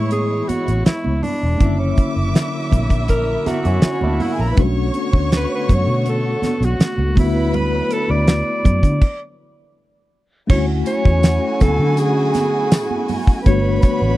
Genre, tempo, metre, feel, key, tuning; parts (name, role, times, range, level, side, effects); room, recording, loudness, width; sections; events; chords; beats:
lush 1970s-style soul; 81 BPM; 4/4; straight; A4 = 437 Hz
breathy alto saxophone; melody; 0.0-14.2 s; C#4 to D5; -22 LUFS; equal
bright studio violin section; second line; 0.0-14.2 s; C#4 to D6; -27 LUFS; right 1 dB
mellow tine electric piano; accompaniment; 0.0-14.2 s; D3 to C#5; -24 LUFS; left 3 dB; medium stereo tremolo
warm studio string section; sustained chords; 0.0-14.2 s; D3 to F#4; -28 LUFS; equal
vintage muted fingered electric bass; bass; 0.0-14.2 s; E1 to D3; -19 LUFS; equal
damped 70s drum kit; drums; 0.1-14.0 s; crash cymbal, hi-hat, kick drum, snare drum; -14 LUFS; equal
congas; percussion; 0.1-14.0 s; -27 LUFS; right 4 dB
electric guitar through a small old amp; riff; 3.5-4.6 s; A#3 to A#4; -26 LUFS; right 3 dB; spring reverb
tambourine; percussion; 10.5-14.0 s; -40 LUFS; left 9 dB
small room reverb; dry, close 1970s-style studio recording; -15 LUFS; side -16 dB against mid
0.0-10.5 A section; 10.5-14.2 B section
alto saxophone solo 0.0-10.5; stop 9.0-10.5
0.0 Amaj7; 1.6 F#7b13; 4.6 Bm9; 7.2 D69; 10.5 Dmaj9#11; 13.5 Gmaj7
0.12 0.86 | 1.61 2.35 3.09 3.83 | 4.57 5.32 6.06 6.80 | 7.54 8.28 9.02 9.76 | 10.50 11.24 11.98 12.72 | 13.46